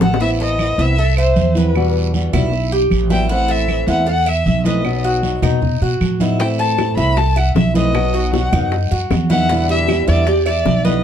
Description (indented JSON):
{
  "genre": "latin, Cuban son and guajira",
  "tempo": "155 BPM",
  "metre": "4/4",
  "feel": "straight",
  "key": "E harmonic minor",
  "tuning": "A4 = 440 Hz",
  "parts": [
    { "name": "warm violin", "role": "melody", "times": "0.0-11.0 s", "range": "B4 to B5", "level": "-20 LUFS", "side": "left 3 dB", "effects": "none" },
    { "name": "nylon-string guitar", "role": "accompaniment", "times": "0.0-11.0 s", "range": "B2 to F#4", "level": "-22 LUFS", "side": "left 2 dB", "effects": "none" },
    { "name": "Cuban tres", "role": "arpeggios", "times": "0.0-11.0 s", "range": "D#4 to E5", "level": "-21 LUFS", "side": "right 2 dB", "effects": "none" },
    { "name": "upright bass", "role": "bass", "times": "0.0-11.0 s", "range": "A1 to B2", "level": "-18 LUFS", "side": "equal", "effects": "none" },
    { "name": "bongos", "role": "percussion", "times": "0.0-0.2, 6.4-10.8 s", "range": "none", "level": "-22 LUFS", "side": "left 4 dB", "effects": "none" },
    { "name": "congas", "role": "percussion", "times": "0.0-11.0 s", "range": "none", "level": "-20 LUFS", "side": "right 2 dB", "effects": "none" },
    { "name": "guiro", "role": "percussion", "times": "0.2-11.0 s", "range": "none", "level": "-33 LUFS", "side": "right 6 dB", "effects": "none" },
    { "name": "claves", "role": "percussion", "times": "0.6-10.7 s", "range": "none", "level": "-31 LUFS", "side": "right 7 dB", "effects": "none" }
  ],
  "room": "light reverb",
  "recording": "dark, warm production",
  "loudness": "-14 LUFS",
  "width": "side -9 dB against mid",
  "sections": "0.2-11.0 A section",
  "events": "drum fill 0.0",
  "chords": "0.2 Amadd9; 1.8 Emadd9; 3.3 Am; 4.8 B; 6.4 Am; 7.9 B; 9.5 Em7",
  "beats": "| 0.20 0.59 0.98 1.36 | 1.75 2.14 2.53 2.91 | 3.30 3.69 4.08 4.46 | 4.85 5.24 5.62 6.01 | 6.40 6.79 7.17 7.56 | 7.95 8.34 8.72 9.11 | 9.50 9.88 10.27 10.66"
}